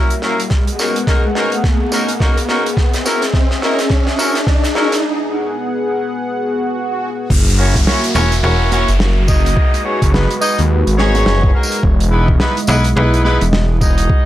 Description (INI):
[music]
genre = glitch hop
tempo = 106 BPM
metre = 4/4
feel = swing 60% on 16ths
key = G# minor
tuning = A4 = 440 Hz
[part]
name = warm analog pad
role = sustained chords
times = 0.0-14.3 s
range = G#3 to F#5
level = -21 LUFS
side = left 1 dB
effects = chorus, sidechain pumping
[part]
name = bright horn section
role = stabs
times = 0.0-14.3 s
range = A#3 to D#5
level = -18 LUFS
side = left 1 dB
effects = sidechain pumping, tape echo
[part]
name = riser, swell and downlifter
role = sound effects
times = 0.0-11.8 s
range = none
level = -22 LUFS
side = right 1 dB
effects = none
[part]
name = loose indie drum kit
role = drums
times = 0.1-14.1 s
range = crash cymbal, hi-hat, snare drum, tambourine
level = -21 LUFS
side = right 1 dB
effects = high-pass filter on hats, high-pass filter on cymbals, high-pass filter on snare, high-pass filter on perc, high-pass filter on room
[part]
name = electronic kick drum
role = drums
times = 0.5-14.2 s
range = none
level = -14 LUFS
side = equal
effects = none
[part]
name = phased detuned saw bass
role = bass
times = 7.3-14.1 s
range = E1 to D#2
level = -14 LUFS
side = equal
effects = phaser, tube saturation
[part]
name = slap-like FM bass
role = bass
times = 8.2-8.9, 12.7-13.4 s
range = E1 to B1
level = -14 LUFS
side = equal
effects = none
[sound]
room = light reverb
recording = dry, gritty hardware recording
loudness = -12 LUFS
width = side -13 dB against mid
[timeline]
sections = 0.0-7.3 A section; 7.3-14.3 B section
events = build-up 0.0-7.3; drum fill 0.0-5.0; riser 0.0-5.0; break 5.0-7.3; swell 6.4-7.3; drop 7.3-14.3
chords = 0.0 F#7; 0.5 G#m7; 2.8 Emaj7; 5.0 G#m7; 7.3 F#7; 9.6 G#m7; 11.8 Emaj7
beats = | 0.51 1.08 1.64 2.21 | 2.77 3.34 3.91 4.47 | 5.04 5.60 6.17 6.74 | 7.30 7.87 8.44 9.00 | 9.57 10.13 10.70 11.27 | 11.83 12.40 12.96 13.53 | 14.10